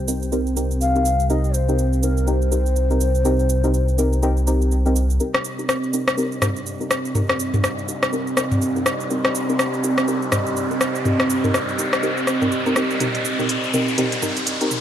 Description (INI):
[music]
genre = afro house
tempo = 123 BPM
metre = 4/4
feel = swing 59% on 16ths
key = C minor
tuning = A4 = 439 Hz
[part]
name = breathy mellow bass bansuri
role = melody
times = 0.0-4.7 s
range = Bb4 to F5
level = -26 LUFS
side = left 2 dB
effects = dub echo
[part]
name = dark analog pad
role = sustained chords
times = 0.0-14.8 s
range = C4 to G5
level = -25 LUFS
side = right 2 dB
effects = chorus
[part]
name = smooth gliding synth bass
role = bass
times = 0.0-5.2 s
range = C2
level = -19 LUFS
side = equal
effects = none
[part]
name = deep mellow chord stab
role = stabs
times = 0.1-14.7 s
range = C4 to Bb4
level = -25 LUFS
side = left 1 dB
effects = chorus, vintage 12-bit sampler grit, tape echo
[part]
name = deep house drum kit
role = drums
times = 0.1-14.8 s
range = hi-hat, rim click, shaker, toms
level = -23 LUFS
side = equal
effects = none
[part]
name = riser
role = sound effects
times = 6.4-14.8 s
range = none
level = -27 LUFS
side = equal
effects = none
[sound]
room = light reverb, digital ambience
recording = dark, warm production, high-pass filter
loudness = -18 LUFS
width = side -10 dB against mid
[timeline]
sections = 0.0-5.2 A section; 5.2-14.8 B section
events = filter sweep on synth stab 0.0-5.2, 5.2-14.8; build-up 5.2-14.8; filter sweep 5.2-14.8; riser 6.4-14.8; drum fill 13.0-14.8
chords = 0.0 Cm7